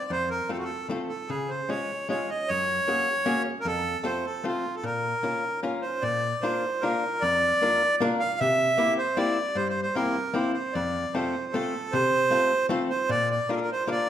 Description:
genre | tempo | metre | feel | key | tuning
musette | 153 BPM | 3/4 | straight | Bb minor, Bb major from 6.0 s | A4 = 440 Hz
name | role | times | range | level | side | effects
accordion | melody | 0.0-14.1 s | F4 to F5 | -25 LUFS | right 1 dB | none
archtop guitar, miked and amplified | accompaniment | 0.1-14.1 s | F2 to Bb4 | -29 LUFS | left 2 dB | none
room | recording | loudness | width
wet recital hall reverb, RT60 1.4 s | minimal, uncompressed stereo recording | -24 LUFS | side -10 dB against mid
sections
0.0-6.0 A section; 6.0-14.1 B section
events
none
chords
0.1 F; 1.3 Db; 2.5 Gbadd9; 3.7 F; 4.8 Bbm; 6.0 Bb; 8.4 C7; 10.7 F; 13.1 Bb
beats
| 0.11 0.50 0.90 | 1.30 1.70 2.10 | 2.49 2.88 3.27 | 3.66 4.05 4.45 | 4.84 5.23 5.63 | 6.04 6.43 6.83 | 7.22 7.61 8.00 | 8.39 8.78 9.17 | 9.56 9.95 10.34 | 10.74 11.14 11.53 | 11.93 12.32 12.71 | 13.09 13.48 13.87

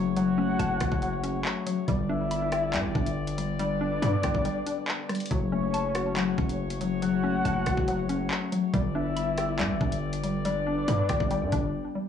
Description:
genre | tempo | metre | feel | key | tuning
hip hop, drill | 140 BPM | 4/4 | half-time | unclear | A4 = 441 Hz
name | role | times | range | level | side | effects
muted felt-like synth keys | accompaniment | 0.0-12.1 s | F#3 to G5 | -32 LUFS | left 4 dB | chorus, low-pass filter
dark brass ensemble | sustained chords | 0.0-12.0 s | C#3 to D5 | -38 LUFS | left 2 dB | none
hollow square pluck | arpeggios | 0.0-12.1 s | F#3 to B5 | -32 LUFS | equal | chorus, low-pass filter, analog delay
distorted 808-style bass | bass | 0.0-11.7 s | F#1 to G2 | -31 LUFS | left 1 dB | distortion
soft octave-layered synth lead | second line | 0.2-11.7 s | C#5 to F#5 | -32 LUFS | left 2 dB | chorus, phaser, analog delay
drill drum kit | drums | 0.2-11.6 s | handclaps, hi-hat, kick drum, rim click | -31 LUFS | equal | vintage 12-bit sampler grit
room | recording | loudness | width
digital ambience | dry, gritty hardware recording, cassette tape, small room reverb | -25 LUFS | side -8 dB against mid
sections
0.0-12.1 A section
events
break 4.5-5.3, 11.7-12.1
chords
0.0 F#m; 1.9 G; 5.3 F#m; 8.7 G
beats
| 0.17 0.59 1.02 1.45 | 1.88 2.31 2.74 3.17 | 3.59 4.02 4.45 4.88 | 5.31 5.74 6.17 6.59 | 7.02 7.45 7.88 8.31 | 8.74 9.17 9.59 10.02 | 10.45 10.88 11.31 11.74

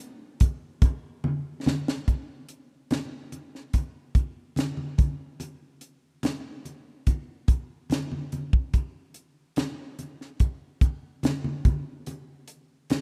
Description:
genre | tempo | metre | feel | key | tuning
soul | 72 BPM | 4/4 | straight | none | none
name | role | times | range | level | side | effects
tight funk drum kit | drums | 0.4-13.0 s | hi-hat, kick drum, snare drum | -25 LUFS | equal | none
congas | percussion | 0.4-13.0 s | none | -35 LUFS | equal | none
room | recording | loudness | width
light reverb, studio ambience | rough home demo mix | -28 LUFS | mono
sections
0.0-2.1 A section; 2.1-13.0 B section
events
drum fill 1.2-2.1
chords
none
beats
0.41 1.24 | 2.07 2.90 3.74 4.57 | 5.40 6.24 7.07 7.90 | 8.73 9.57 10.40 11.23 | 12.07 12.90

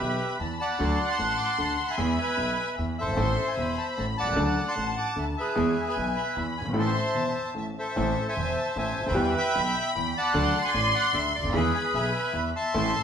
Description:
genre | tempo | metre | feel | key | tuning
tango | 151 BPM | 3/4 | rubato | A harmonic minor | A4 = 438 Hz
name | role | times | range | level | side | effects
bandoneon | melody | 0.0-13.0 s | G4 to D6 | -27 LUFS | equal | none
dark studio violin section | second line | 0.0-13.0 s | G#5 to C6 | -32 LUFS | left 2 dB | none
clear concert grand piano | accompaniment | 0.0-12.9 s | E1 to A4 | -30 LUFS | equal | none
upright bass | bass | 0.0-12.9 s | E1 to E2 | -33 LUFS | right 1 dB | none
room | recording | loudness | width
wet large studio reverb, RT60 1.1 s | band playing live in one room | -24 LUFS | side -8 dB against mid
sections
0.0-8.0 A section; 8.0-13.0 A section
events
none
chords
0.0 Em; 0.8 D; 2.0 E; 3.2 Am; 4.4 D; 5.6 E; 6.8 Am; 9.2 Em; 10.3 D; 11.5 E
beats
0.00 0.40 | 0.79 1.19 1.58 | 1.98 2.38 2.78 | 3.18 3.58 3.98 | 4.38 4.78 5.17 | 5.57 5.96 6.36 | 6.76 7.15 7.55 | 7.96 8.36 8.76 | 9.15 9.55 9.95 | 10.34 10.74 11.13 | 11.53 11.93 12.34 | 12.74

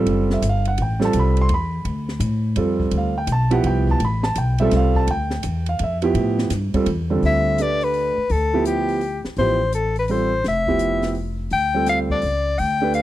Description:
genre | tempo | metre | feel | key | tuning
modal jazz | 168 BPM | 3/4 | swing 65% on 8ths | D dorian | A4 = 439 Hz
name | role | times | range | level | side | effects
warm concert grand piano | accompaniment | 0.0-13.0 s | D3 to C6 | -22 LUFS | right 3 dB | none
upright bass | bass | 0.0-13.0 s | F1 to A2 | -22 LUFS | left 1 dB | none
open jazz drum kit | drums | 0.1-13.0 s | hi-hat, kick drum, ride cymbal, snare drum | -31 LUFS | left 1 dB | none
warm soprano saxophone | melody | 7.3-13.0 s | G4 to G5 | -21 LUFS | left 3 dB | none
room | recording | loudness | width
small room reverb | dry, close 1970s-style studio recording | -18 LUFS | side -14 dB against mid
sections
0.0-7.2 A section; 7.2-13.0 B section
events
none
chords
0.0 Dm11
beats
0.08 0.44 | 0.80 1.15 1.51 | 1.87 2.22 2.58 | 2.94 3.29 3.65 | 4.01 4.37 4.72 | 5.08 5.44 5.79 | 6.15 6.51 6.87 | 7.22 7.58 7.94 | 8.30 8.66 9.01 | 9.37 9.73 10.09 | 10.45 10.80 11.16 | 11.52 11.88 12.24 | 12.60 12.95

